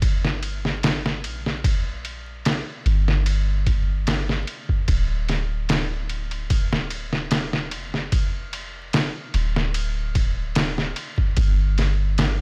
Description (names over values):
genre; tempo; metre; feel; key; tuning
trip hop; 74 BPM; 4/4; straight; D minor; A4 = 442 Hz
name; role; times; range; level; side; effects
soft 808-style bass; bass; 0.0-12.4 s; D1 to Bb1; -27 LUFS; equal; none
trip hop sampler-style drum kit; drums; 0.0-12.4 s; kick drum, ride cymbal, snare drum; -25 LUFS; equal; studio reverb
room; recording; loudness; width
digital ambience; vinyl crackle; -23 LUFS; mono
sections
0.0-12.4 A section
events
none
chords
none